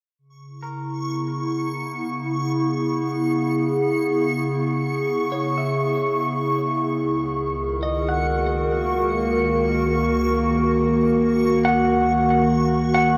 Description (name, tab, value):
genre	ambient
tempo	free time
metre	none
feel	none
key	C# dorian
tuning	A4 = 438 Hz
part	warbly tape-like pad	sustained chords	0.6-13.2 s	C#2 to A#4	-23 LUFS	equal	chorus, built-in reverb
part	backwards swelling texture	texture	0.7-13.2 s	C#6	-31 LUFS	equal	built-in reverb, shimmer reverb
part	clean electric guitar	arpeggios	0.6-13.2 s	A#4 to F#5	-28 LUFS	equal	delay, shimmer reverb
room	wet huge ambient reverb, RT60 8.5 s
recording	none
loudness	-22 LUFS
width	mono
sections	0.2-13.2 A section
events	fade-in on clean electric guitar 0.2-13.2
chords	0.2 C#m7; 7.0 D#m/C#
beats	free time